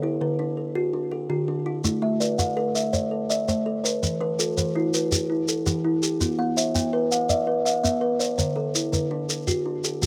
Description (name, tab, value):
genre	southern african traditional, mbira-style interlocking cycle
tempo	110 BPM (dotted quarters)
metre	12/8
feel	straight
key	A equiheptatonic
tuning	A4 = 440 Hz
part	kalimba	arpeggios	0.0-10.1 s	D3 to F#5-43c	-29 LUFS	equal	slapback echo
part	kalimba	arpeggios	0.0-10.1 s	D3 to G5+29c	-28 LUFS	equal	slapback echo
part	shekere	percussion	1.8-10.1 s	none	-28 LUFS	equal	none
room	little or no reverb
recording	recorded outdoors, with no room sound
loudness	-25 LUFS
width	mono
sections	0.0-10.1 A section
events	none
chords	0.0 D; 1.8 Am; 4.0 Em; 6.2 Bm; 8.4 D